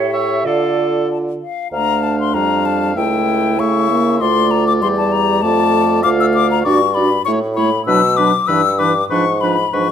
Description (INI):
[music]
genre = quick classical-period movement for wind quintet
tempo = 98 BPM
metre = 2/4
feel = straight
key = D minor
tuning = A4 = 441 Hz
[part]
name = bright silver concert flute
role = melody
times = 0.0-9.9 s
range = E5 to E6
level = -17 LUFS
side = left 9 dB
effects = none
[part]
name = clear clarinet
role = accompaniment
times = 0.0-9.9 s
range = D4 to E5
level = -20 LUFS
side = right 8 dB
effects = none
[part]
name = warm French horn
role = accompaniment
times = 0.0-9.9 s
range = E3 to G4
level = -21 LUFS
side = equal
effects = none
[part]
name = clear bassoon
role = bass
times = 0.0-9.9 s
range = C#2 to D3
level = -20 LUFS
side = right 2 dB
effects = none
[part]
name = clear oboe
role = second line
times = 0.1-9.9 s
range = A4 to F5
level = -23 LUFS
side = left 3 dB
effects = none
[sound]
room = moderate recital hall reverb, RT60 1.5 s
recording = close, detailed microphones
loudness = -13 LUFS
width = side -8 dB against mid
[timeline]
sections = 0.0-1.7 A section; 1.7-9.9 A section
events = none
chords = 0.4 Dm; 3.0 A7/C#; 4.2 Dm; 5.4 Dm/F; 6.7 Gmaj7; 7.3 A; 7.9 Bm; 8.5 Em7/G; 9.1 G#dim7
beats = | 0.45 1.09 | 1.73 2.35 | 2.96 3.59 | 4.21 4.82 | 5.43 6.04 | 6.65 7.26 | 7.87 8.48 | 9.11 9.74